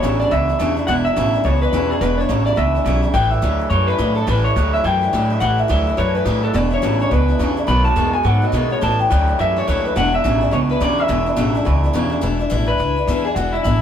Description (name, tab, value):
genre	rockabilly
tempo	211 BPM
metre	4/4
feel	swing 61% on 8ths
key	E mixolydian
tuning	A4 = 440 Hz
part	electric guitar through a small old amp	melody	0.0-13.8 s	E4 to B5	-20 LUFS	left 2 dB	none
part	picked acoustic archtop guitar	accompaniment	0.0-13.8 s	E2 to F#4	-24 LUFS	left 4 dB	none
part	electric guitar through a small old amp	riff	0.0-12.2 s	E2 to G#3	-22 LUFS	right 5 dB	none
part	upright bass	bass	0.0-13.8 s	E1 to B2	-19 LUFS	equal	none
room	moderate large studio reverb, RT60 1.0 s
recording	band playing live in one room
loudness	-15 LUFS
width	side -9 dB against mid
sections	0.0-12.2 A section; 12.2-13.8 B section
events	clean electric guitar solo 12.2-13.8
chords	0.0 E7; 3.1 A7; 6.5 E7; 7.7 B7; 8.8 A7; 10.0 E7